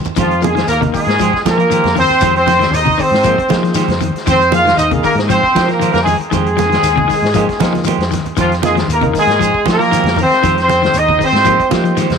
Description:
afrobeat; 117 BPM; 4/4; straight; F minor; A4 = 440 Hz
clean electric guitar; arpeggios; 0.0-12.1 s; C3 to F3; -21 LUFS; left 12 dB
shekere; percussion; 0.0-12.1 s; -27 LUFS; left 6 dB
semi-hollow electric guitar; stabs; 0.1-12.1 s; Ab3 to C5; -23 LUFS; right 13 dB; spring reverb
congas; percussion; 0.1-12.2 s; -22 LUFS; right 10 dB
warm horn section; melody; 0.2-11.7 s; F3 to F5; -14 LUFS; equal; tape echo
clear trumpet; second line; 0.2-11.7 s; F4 to F5; -23 LUFS; right 12 dB; tape echo
fingered electric bass; bass; 0.2-12.2 s; Eb2 to F3; -19 LUFS; equal
vintage drum kit; drums; 0.2-12.2 s; hi-hat, kick drum, snare drum; -22 LUFS; left 5 dB
tine electric piano; accompaniment; 0.4-12.1 s; Bb3 to Bb4; -22 LUFS; equal; overdrive, fast stereo tremolo
light reverb, small room ambience; 1960s-style stereo with parts hard left and right; -11 LUFS; side -6 dB against mid
0.2-12.2 A section
drum fill 0.0, 7.6-8.4
0.2 Fm9

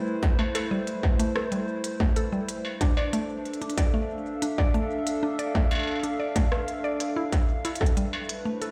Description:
IDM; 93 BPM; 4/4; straight; A4 = 439 Hz
hollow soft pad; sustained chords; 0.0-8.7 s; A3 to F5; -33 LUFS; equal; chorus, vintage 12-bit sampler grit
electronic kick drum; drums; 0.2-7.9 s; -26 LUFS; equal; distortion
industrial drum kit; drums; 0.2-8.7 s; hi-hat, rim click, struck metal; -36 LUFS; equal; digital delay
mallet-like synth pluck; arpeggios; 0.4-8.7 s; G3 to D5; -33 LUFS; equal; chorus, vintage 12-bit sampler grit, digital delay
light reverb; played on a big sound system in a bare room, stone room reverb; -27 LUFS; mono
0.0-8.7 A section
0.0 Am; 2.6 Dmadd9; 7.8 Am

